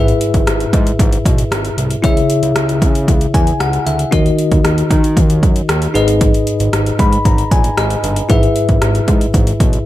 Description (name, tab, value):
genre	1980s-style pop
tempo	115 BPM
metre	4/4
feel	straight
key	G# minor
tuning	A4 = 440 Hz
part	bell-like tine electric piano	accompaniment	0.0-9.9 s	G#2 to B5	-16 LUFS	left 2 dB	fast stereo tremolo
part	fat analog bass	bass	0.0-9.8 s	G1 to D#3	-17 LUFS	equal	none
part	80s electronic pad drums	drums	0.1-9.9 s	hi-hat, kick drum, rim click	-14 LUFS	equal	overdrive, gated reverb
room	light reverb, digital ambience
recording	none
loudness	-11 LUFS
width	side -14 dB against mid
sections	0.0-9.9 A section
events	tine electric piano fill 3.1-4.1, 6.7-8.3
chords	0.0 E/G#; 2.0 C#m; 4.1 D#m; 6.0 G#m; 8.3 E/G#